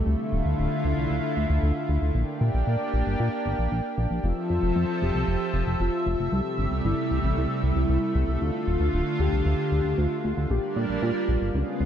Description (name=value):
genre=synthwave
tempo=115 BPM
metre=4/4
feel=straight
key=unclear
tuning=A4 = 440 Hz
part: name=lush unison pad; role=sustained chords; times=0.0-11.9 s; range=C3 to E5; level=-27 LUFS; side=equal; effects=chorus, vintage 12-bit sampler grit
part: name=chorused synth bass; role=bass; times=0.0-11.9 s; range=D1 to Bb2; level=-25 LUFS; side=equal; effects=none
part: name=warm velvety synth lead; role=melody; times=4.2-11.9 s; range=Db4 to G4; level=-30 LUFS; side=left 1 dB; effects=chorus, ping-pong delay
room=light reverb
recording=dark, warm production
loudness=-23 LUFS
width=side -9 dB against mid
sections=0.0-11.9 A section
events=none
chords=0.1 Dmadd9; 2.2 Bb6; 4.2 Fmaj7; 6.3 C6; 8.4 Dmadd9; 10.5 Bb6